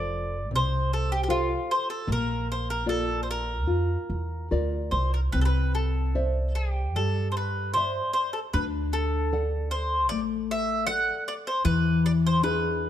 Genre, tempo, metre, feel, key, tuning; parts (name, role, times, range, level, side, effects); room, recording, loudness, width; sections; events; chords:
fado-style ballad; 75 BPM; 4/4; uneven beats, rubato; A4 = 441 Hz
mandolin; melody; 0.0-12.9 s; F4 to F#5; -28 LUFS; equal
nylon-string guitar; accompaniment; 0.0-12.9 s; C3 to F#5; -29 LUFS; left 3 dB
upright bass; bass; 0.0-12.9 s; F1 to G2; -28 LUFS; right 1 dB
moderate recital hall reverb, RT60 1.7 s; close, detailed microphones; -24 LUFS; side -11 dB against mid
0.0-12.9 A section
0.0 F; 2.1 Bb; 5.3 Cadd9; 8.5 D; 11.6 E7